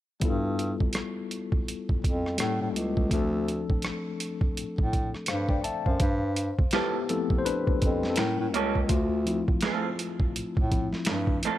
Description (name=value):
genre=R&B, neo-soul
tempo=83 BPM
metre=4/4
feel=swing 60% on 16ths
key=D dorian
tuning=A4 = 440 Hz
part: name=tine electric piano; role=accompaniment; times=0.2-11.6 s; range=F3 to A5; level=-31 LUFS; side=left 5 dB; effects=medium stereo tremolo
part: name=clear bass clarinet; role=bass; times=0.2-11.4 s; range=C#2 to A2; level=-29 LUFS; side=right 1 dB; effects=none
part: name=boom bap sampler-style drum kit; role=drums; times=0.2-11.6 s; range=finger snaps, hi-hat, kick drum, rim click, snare drum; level=-27 LUFS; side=right 1 dB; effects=none
part: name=electric guitar through a small old amp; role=second line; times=6.7-11.6 s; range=F3 to A4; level=-31 LUFS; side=right 7 dB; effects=spring reverb
room=little or no reverb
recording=none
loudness=-25 LUFS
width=side -13 dB against mid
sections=0.2-6.0 A section; 6.0-11.6 B section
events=tine electric piano solo 6.0-11.6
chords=0.2 G13; 2.4 A7b9; 3.1 Dm7; 6.0 G13; 8.2 A7b9; 8.9 Dm7